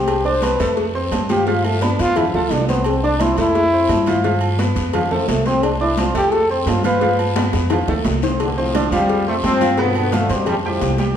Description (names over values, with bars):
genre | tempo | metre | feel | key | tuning
latin, salsa | 173 BPM | 4/4 | straight | unclear | A4 = 444 Hz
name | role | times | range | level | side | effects
warm trombone | melody | 0.0-7.3 s | F3 to C5 | -19 LUFS | equal | none
bright upright piano | accompaniment | 0.0-11.2 s | B2 to D6 | -22 LUFS | right 2 dB | none
upright bass | bass | 0.0-11.2 s | C2 to G2 | -22 LUFS | equal | none
agogo bells and timbales | percussion | 0.1-11.0 s | none | -28 LUFS | right 6 dB | none
congas | percussion | 0.1-11.2 s | none | -26 LUFS | left 2 dB | none
cowbell and bongos | percussion | 0.1-11.2 s | none | -27 LUFS | left 6 dB | none
guiro | percussion | 0.1-11.2 s | none | -34 LUFS | left 4 dB | none
bright trombone section | melody | 8.4-11.0 s | G2 to C4 | -20 LUFS | left 1 dB | none
room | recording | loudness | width
wet recital hall reverb, RT60 1.4 s | recorded in a church or concert hall | -15 LUFS | side -9 dB against mid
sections
0.0-8.4 A section; 8.4-11.2 B section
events
trombone solo 0.0-8.4; drum fill 7.4-8.4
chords
0.0 Csus2; 0.8 Fadd9; 1.5 G7; 2.2 F; 3.6 Fadd9; 4.2 G7; 4.9 F; 5.6 Csus2; 6.3 Fadd9; 7.0 G7; 7.7 F; 8.4 Csus2; 9.1 Fsus2; 9.8 G7; 10.5 Fadd9